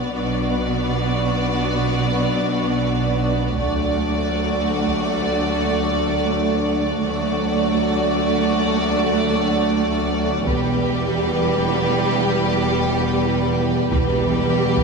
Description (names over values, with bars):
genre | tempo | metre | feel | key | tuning
cinematic, epic orchestral film score | 70 BPM | 4/4 | straight | unclear | A4 = 439 Hz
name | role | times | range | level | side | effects
clear symphonic violin section | melody | 0.0-14.8 s | B4 to D5 | -26 LUFS | left 1 dB | none
rich symphonic violin section | second line | 0.0-14.8 s | F#4 to G4 | -27 LUFS | left 3 dB | none
clear symphonic viola section | accompaniment | 0.0-14.8 s | G3 to B3 | -26 LUFS | equal | none
mellow French horn section | sustained chords | 0.0-14.8 s | F#3 to D4 | -24 LUFS | left 2 dB | none
clear symphonic double bass section | bass | 0.0-14.8 s | E1 to D2 | -25 LUFS | right 6 dB | none
warm symphonic cello section | bass | 0.0-14.8 s | D2 to B2 | -25 LUFS | right 5 dB | none
taiko ensemble | drums | 3.6-5.3, 10.5-14.8 s | none | -27 LUFS | equal | none
room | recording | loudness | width
wet concert hall reverb, RT60 1.8 s | studio ambience | -18 LUFS | side -4 dB against mid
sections
0.0-14.8 A section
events
build-up 0.0-14.8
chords
0.0 Bm; 3.6 D; 10.5 Em